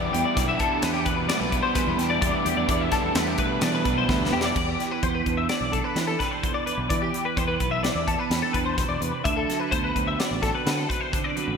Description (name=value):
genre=math rock and midwest emo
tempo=128 BPM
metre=5/4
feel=straight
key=E minor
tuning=A4 = 440 Hz
part: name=twelve-string electric guitar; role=accompaniment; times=0.0-11.6 s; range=E2 to G4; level=-30 LUFS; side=right 9 dB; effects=lush chorus
part: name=twelve-string electric guitar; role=arpeggios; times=0.0-11.6 s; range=G4 to E5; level=-26 LUFS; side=left 4 dB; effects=ensemble chorus, digital delay
part: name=crunchy overdriven guitar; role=riff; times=0.0-4.6 s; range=E3 to E4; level=-28 LUFS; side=left 1 dB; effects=lush chorus
part: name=growling fingered electric bass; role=bass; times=0.0-11.6 s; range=A1 to E3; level=-30 LUFS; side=equal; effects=overdrive
part: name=modern studio drum kit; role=drums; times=0.1-11.5 s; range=crash cymbal, hi-hat, kick drum, snare drum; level=-28 LUFS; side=equal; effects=gated reverb
room=wet lush hall reverb, RT60 1.8 s, small room ambience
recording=bright 1980s-style digital production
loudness=-22 LUFS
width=side -6 dB against mid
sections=0.0-4.6 A section; 4.6-11.6 B section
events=drum fill 4.1-4.6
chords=0.0 Em7; 9.3 D13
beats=0.37 0.83 1.30 1.76 | 2.23 2.69 3.16 3.62 4.09 | 4.56 5.03 5.50 5.96 6.43 | 6.90 7.37 7.84 8.31 8.78 | 9.25 9.72 10.19 10.66 11.13